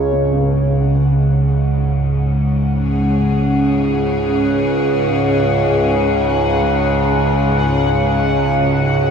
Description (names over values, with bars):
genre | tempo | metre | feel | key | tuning
dark ambient drone | free time | none | none | unclear | A4 = 440 Hz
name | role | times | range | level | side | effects
overtone-sweeping drone | drone | 0.0-9.1 s | C#2 to C#3 | -14 LUFS | right 1 dB | chorus, built-in reverb
bubbling stepped-filter texture | texture | 0.0-9.1 s | C#5 to F#5 | -27 LUFS | left 4 dB | chorus, built-in reverb
rich studio cello section | sustained chords | 0.2-9.1 s | G#2 to G#4 | -21 LUFS | left 1 dB | none
room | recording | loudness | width
wet huge ambient reverb, RT60 7.8 s | dreamy mix soaked in reverb | -13 LUFS | side -6 dB against mid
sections
0.2-9.1 A section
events
fade-in on cello section 0.2-9.1; fade-in on synth texture 0.2-9.1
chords
0.2 C#5